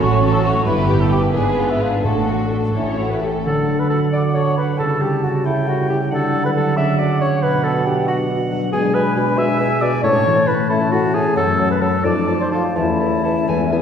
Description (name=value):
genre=classical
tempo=82-93 BPM (dotted quarters)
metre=6/8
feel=rubato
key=D major, A major from 8.7 s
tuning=A4 = 440 Hz
part: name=warm symphonic violin section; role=melody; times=0.0-3.5 s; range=E4 to B4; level=-29 LUFS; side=left 2 dB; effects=none
part: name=clear clarinet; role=second line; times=0.0-13.8 s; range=C#4 to E5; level=-22 LUFS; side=equal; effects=none
part: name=dark symphonic violin section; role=second line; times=0.0-3.5 s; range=A3 to G4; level=-29 LUFS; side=left 2 dB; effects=none
part: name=mellow cor anglais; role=second line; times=0.0-13.8 s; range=E4 to A5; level=-27 LUFS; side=right 2 dB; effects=none
part: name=mellow hollow concert flute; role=second line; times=0.0-13.8 s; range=E5 to E6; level=-25 LUFS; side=equal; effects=none
part: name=dark bassoon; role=accompaniment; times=0.0-13.8 s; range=A2 to B3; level=-24 LUFS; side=equal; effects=none
part: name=dark symphonic viola section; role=accompaniment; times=0.0-3.5 s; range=F#4 to C#5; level=-28 LUFS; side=right 1 dB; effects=none
part: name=dark French horn section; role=sustained chords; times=0.0-13.8 s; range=F#3 to E4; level=-25 LUFS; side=left 3 dB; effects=none
part: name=concert harp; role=arpeggios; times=0.0-13.8 s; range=E2 to D5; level=-21 LUFS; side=left 1 dB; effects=none
part: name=rich symphonic cello section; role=bass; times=0.0-3.4 s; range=G2 to A2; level=-25 LUFS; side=right 4 dB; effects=none
part: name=warm symphonic double bass section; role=bass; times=0.0-3.4 s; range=G1 to A1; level=-22 LUFS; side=right 4 dB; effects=none
part: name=timpani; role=percussion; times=2.0-2.7 s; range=A2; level=-28 LUFS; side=equal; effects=none
room=wet scoring stage reverb, RT60 1.8 s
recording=heard from further back in the room, lossy compression artefacts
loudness=-15 LUFS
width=side -8 dB against mid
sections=0.0-3.5 A section; 3.5-13.8 B section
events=none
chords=0.0 F#m/A; 0.7 Em/G; 1.3 G#dim7; 2.0 D/A; 2.8 A; 3.5 D; 4.8 A7/C#; 6.1 D; 7.4 Bm; 8.7 E7/B; 10.0 A; 11.4 F#m; 12.0 F7; 12.8 A/E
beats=0.00 | 0.66 1.34 | 2.04 2.75 | 3.45 4.13 | 4.80 5.46 | 6.11 6.77 | 7.42 8.07 | 8.72 9.37 | 10.03 10.69 | 11.36 12.05 | 12.76 13.48